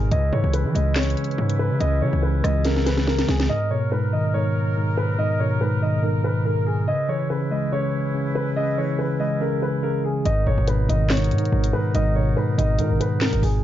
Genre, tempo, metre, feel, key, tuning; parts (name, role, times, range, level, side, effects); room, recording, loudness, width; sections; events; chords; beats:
hip hop, drill; 142 BPM; 4/4; half-time; G# minor; A4 = 439 Hz
dark concert grand piano; melody; 0.0-13.6 s; G#4 to D#5; -26 LUFS; left 1 dB; low-pass filter
mellow tine electric piano; accompaniment; 0.0-13.6 s; G#2 to G#3; -22 LUFS; equal; fast stereo tremolo, low-pass filter
mellow woodwind section; sustained chords; 0.0-13.6 s; G#3 to B4; -33 LUFS; equal
distorted 808-style bass; bass; 0.0-3.5, 10.3-13.6 s; G#1 to E3; -22 LUFS; equal; distortion
drill drum kit; drums; 0.1-3.5, 10.3-13.5 s; handclaps, hi-hat, rim click, snare drum; -26 LUFS; equal; vintage 12-bit sampler grit
light reverb, studio ambience; dark, warm production, nothing above 7.5 kHz; -19 LUFS; side -12 dB against mid
0.0-3.5 A section; 3.5-13.6 A section
drum fill 2.7-3.5
0.1 C#m7; 3.5 G#madd9; 6.9 C#m7; 10.3 G#madd9
| 0.12 0.54 0.96 1.38 | 1.81 2.23 2.65 3.07 | 3.50 3.92 4.34 4.76 | 5.19 5.61 6.03 6.45 | 6.88 7.30 7.72 8.14 | 8.57 8.99 9.41 9.83 | 10.26 10.68 11.10 11.52 | 11.95 12.37 12.79 13.21 | 13.64